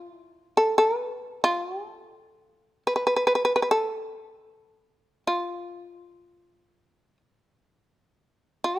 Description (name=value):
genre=japanese traditional, Japanese chamber music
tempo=free time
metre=none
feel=none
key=unclear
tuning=A4 = 440 Hz
part: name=shamisen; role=solo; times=0.0-8.8 s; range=F4 to B4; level=-23 LUFS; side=equal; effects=none
room=light reverb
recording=close, detailed microphones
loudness=-23 LUFS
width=side -16 dB against mid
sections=0.0-8.8 A section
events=none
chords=none